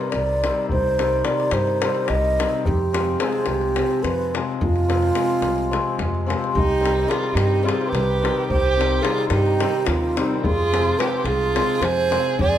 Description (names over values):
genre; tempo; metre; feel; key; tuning
balkan folk, Balkan wedding band; 216 BPM (eighths); 7/8; straight; unclear; A4 = 440 Hz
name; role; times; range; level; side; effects
breathy wooden-headed alto flute; melody; 0.0-12.6 s; Eb4 to Eb5; -22 LUFS; right 3 dB; none
hammered dulcimer; accompaniment; 0.0-12.6 s; C3 to C4; -25 LUFS; left 5 dB; none
davul; percussion; 0.0-12.6 s; none; -27 LUFS; left 4 dB; none
upright bass; bass; 0.1-12.6 s; C2 to G2; -24 LUFS; equal; none
dark violin; second line; 6.6-12.6 s; C4 to Ab4; -26 LUFS; right 3 dB; none
room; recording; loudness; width
moderate recital hall reverb, RT60 1.3 s; none; -18 LUFS; side -10 dB against mid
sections
0.0-6.6 A section; 6.6-12.6 A section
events
none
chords
0.0 Cm; 2.7 Fm; 6.6 Cm; 10.4 Fm